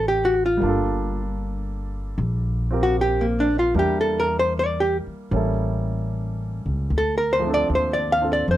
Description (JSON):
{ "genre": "jazz ballad", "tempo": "76 BPM", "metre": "4/4", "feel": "swing 68% on 8ths", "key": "unclear", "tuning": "A4 = 440 Hz", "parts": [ { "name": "archtop guitar, miked and amplified", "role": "melody", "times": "0.0-8.6 s", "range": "Bb3 to F5", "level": "-20 LUFS", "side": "equal", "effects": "none" }, { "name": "warm grand piano", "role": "accompaniment", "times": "0.0-8.6 s", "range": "F3 to Bb4", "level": "-28 LUFS", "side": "right 2 dB", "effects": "none" }, { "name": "upright bass", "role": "bass", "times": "0.0-8.6 s", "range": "G1 to F2", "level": "-25 LUFS", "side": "equal", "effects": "none" } ], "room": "little or no reverb", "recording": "none", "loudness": "-20 LUFS", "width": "side -14 dB against mid", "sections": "0.0-8.6 A section", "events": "hollow-body jazz guitar solo 0.0-8.6", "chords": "0.0 D7b13; 0.6 Gm9; 3.8 Em7b5; 5.3 A7b9; 6.9 Dm7" }